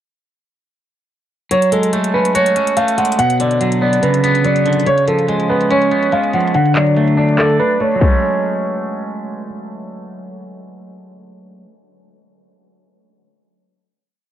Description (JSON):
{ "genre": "hip hop, trap", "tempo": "143 BPM", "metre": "4/4", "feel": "half-time", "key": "F# harmonic minor", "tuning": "A4 = 441 Hz", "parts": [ { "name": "dark baby grand piano", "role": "melody", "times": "1.5-9.4 s", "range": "A4 to F#5", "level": "-16 LUFS", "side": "equal", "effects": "tape echo" }, { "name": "twangy electric guitar", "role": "accompaniment", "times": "1.5-11.8 s", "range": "B2 to D5", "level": "-16 LUFS", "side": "equal", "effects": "lush chorus" }, { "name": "trap drum kit", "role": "drums", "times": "1.5-8.1 s", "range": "crash cymbal, handclaps, hi-hat, kick drum", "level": "-20 LUFS", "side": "left 1 dB", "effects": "none" } ], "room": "light reverb", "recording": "dark, warm production, low-pass filter", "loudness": "-13 LUFS", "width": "side -11 dB against mid", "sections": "1.5-8.2 breakdown; 8.2-11.6 final hit", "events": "filter sweep 1.5-8.2", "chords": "1.5 F#madd9; 3.2 Bmadd9; 4.9 C#7; 6.5 D; 8.0 F#madd9", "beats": "| 1.51 1.93 2.35 2.77 | 3.19 3.61 4.03 4.45 | 4.87 5.29 5.71 6.13 | 6.54 6.96 7.38 7.80 | 8.22 8.64 9.06 9.48 | 9.90 10.32 10.74 11.16" }